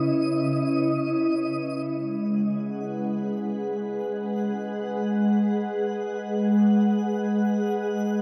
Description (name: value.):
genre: ambient.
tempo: free time.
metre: none.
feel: none.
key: unclear.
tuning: A4 = 440 Hz.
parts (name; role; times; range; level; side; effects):
glassy FM pad; sustained chords; 0.0-8.2 s; C#3 to F#5; -25 LUFS; equal; ensemble chorus, built-in reverb.
twinkling granular texture; texture; 0.0-8.2 s; D#5 to F#6; -40 LUFS; equal; built-in reverb.
room: wet huge ambient reverb, RT60 8.6 s.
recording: cassette tape.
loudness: -25 LUFS.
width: mono.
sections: 0.0-1.9 A section; 1.9-8.2 B section.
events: fade-in on synth texture 1.9-8.2.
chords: 0.0 C#m7; 1.9 G#m7.